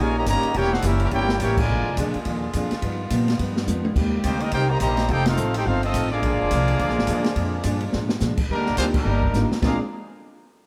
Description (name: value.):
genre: jazz, big band swing.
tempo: 212 BPM.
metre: 4/4.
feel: swing 60% on 8ths.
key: Bb major.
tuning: A4 = 442 Hz.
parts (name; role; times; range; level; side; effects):
clear trumpet section; melody; 0.0-2.0, 4.2-9.8 s; G3 to Bb5; -28 LUFS; equal; none.
mellow trombone section; second line; 0.0-2.0, 4.2-9.8 s; Bb2 to G4; -32 LUFS; equal; none.
fingerpicked steel-string acoustic guitar; accompaniment; 0.0-9.8 s; F2 to G4; -32 LUFS; equal; none.
bright trombone section; sustained chords; 0.0-8.5 s; Db3 to G4; -35 LUFS; equal; none.
upright bass; bass; 0.0-9.8 s; E1 to A#2; -27 LUFS; equal; none.
open jazz drum kit; drums; 0.3-9.7 s; crash cymbal, hi-hat, kick drum, ride cymbal, snare drum, toms; -29 LUFS; equal; none.
warm concert grand piano; accompaniment; 8.8-9.8 s; Bb3 to Bb4; -32 LUFS; equal; none.
room: moderate echo chamber reverb, RT60 1.8 s.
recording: heard from further back in the room.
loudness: -22 LUFS.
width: mono.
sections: 0.0-8.5 A section; 8.5-9.6 B section; 9.6-10.7 C section.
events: band accent 1.6, 5.2, 8.9; drum fill 3.7, 7.9, 9.3.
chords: 0.0 Eb7; 0.6 Edim7; 1.7 Bb7; 2.8 G7alt; 4.0 Cm7; 5.1 F7; 6.2 Bb7; 8.5 Ebmaj7; 9.6 Bb7.